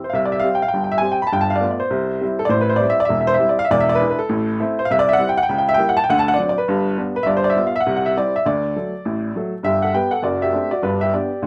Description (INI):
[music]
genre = jazz, stride piano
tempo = 202 BPM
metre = 4/4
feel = swing 62% on 8ths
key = C major, G major from 4.9 s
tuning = A4 = 439 Hz
[part]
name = clear upright piano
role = solo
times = 0.0-11.5 s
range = E1 to B5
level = -19 LUFS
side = equal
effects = none
[sound]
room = moderate studio ambience, RT60 0.5 s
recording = none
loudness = -19 LUFS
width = mono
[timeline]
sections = 0.1-9.6 A section; 9.6-11.5 B section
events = none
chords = 0.1 C5; 1.3 G9; 1.9 C; 2.5 Am7; 3.7 E7; 4.3 Am; 4.9 C; 5.5 C#dim7; 6.1 D7; 6.7 G; 7.3 G7; 7.9 C; 8.4 D; 9.6 G; 10.2 D7/F#; 10.8 G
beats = | 0.14 0.43 0.73 1.03 | 1.32 1.62 1.92 2.21 | 2.51 2.81 3.11 3.40 | 3.70 4.00 4.29 4.59 | 4.89 5.18 5.48 5.78 | 6.08 6.37 6.67 6.96 | 7.26 7.56 7.85 8.15 | 8.44 8.74 9.04 9.33 | 9.63 9.92 10.22 10.52 | 10.81 11.11 11.41